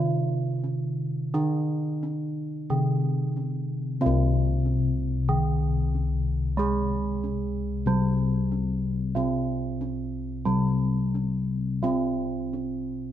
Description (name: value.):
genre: Javanese gamelan.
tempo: 91 BPM.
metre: 4/4.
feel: uneven beats.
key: C pelog.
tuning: A4 = 437 Hz.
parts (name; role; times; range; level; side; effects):
gamelan-type bronze metallophone; accompaniment; 0.0-13.1 s; C3 to Ab3-20c; -28 LUFS; right 3 dB; none.
gamelan-type bossed gongs; bass; 0.0-13.1 s; C2 to C5; -27 LUFS; left 3 dB; none.
room: light reverb.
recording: none.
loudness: -24 LUFS.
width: side -11 dB against mid.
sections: 0.0-4.0 A section; 4.0-13.1 B section.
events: none.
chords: none.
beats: 0.62 | 1.33 2.02 2.69 3.36 | 4.01 4.65 5.29 5.94 | 6.58 7.22 7.87 8.51 | 9.15 9.80 10.47 11.14 | 11.83 12.54.